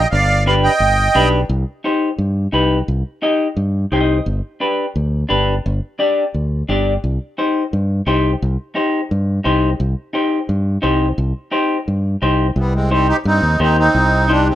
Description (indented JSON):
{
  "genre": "latin, cumbia",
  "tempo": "174 BPM",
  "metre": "4/4",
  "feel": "straight",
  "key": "C harmonic minor",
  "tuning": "A4 = 441 Hz",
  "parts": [
    { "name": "accordion", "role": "melody", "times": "0.0-1.3, 12.6-14.6 s", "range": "G3 to G5", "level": "-15 LUFS", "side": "right 2 dB", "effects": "light tremolo tuning" },
    { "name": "fingered electric bass", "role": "bass", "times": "0.0-14.5 s", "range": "G1 to G2", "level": "-17 LUFS", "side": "equal", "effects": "none" },
    { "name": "semi-hollow electric guitar", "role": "accompaniment", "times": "0.5-14.5 s", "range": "D4 to G5", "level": "-17 LUFS", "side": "left 2 dB", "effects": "plate reverb" }
  ],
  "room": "wet small room reverb, RT60 0.5 s",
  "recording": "rough home demo mix",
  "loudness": "-15 LUFS",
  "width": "side -13 dB against mid",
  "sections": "0.0-1.5 A section; 1.5-12.6 B section; 12.6-14.6 C section",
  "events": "clean electric guitar fill 3.7-4.3",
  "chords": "0.1 G7; 1.5 Cm; 4.3 G; 7.0 Cm"
}